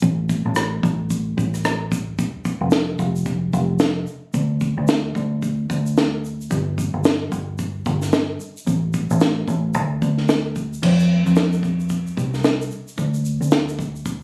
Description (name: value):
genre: acoustic pop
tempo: 111 BPM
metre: 4/4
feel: swing 60% on 16ths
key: unclear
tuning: A4 = 440 Hz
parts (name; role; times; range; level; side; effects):
- vintage muted fingered electric bass; bass; 0.0-14.2 s; F1 to F2; -23 LUFS; equal; none
- compact cocktail drum kit; drums; 0.0-14.2 s; crash cymbal, kick drum, rim click, shaker, snare drum; -24 LUFS; equal; none
room: moderate small room reverb, RT60 0.5 s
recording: recorded on a phone in the room, studio reverb, compression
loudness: -21 LUFS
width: mono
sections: 0.0-10.8 A section; 10.8-14.2 B section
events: none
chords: none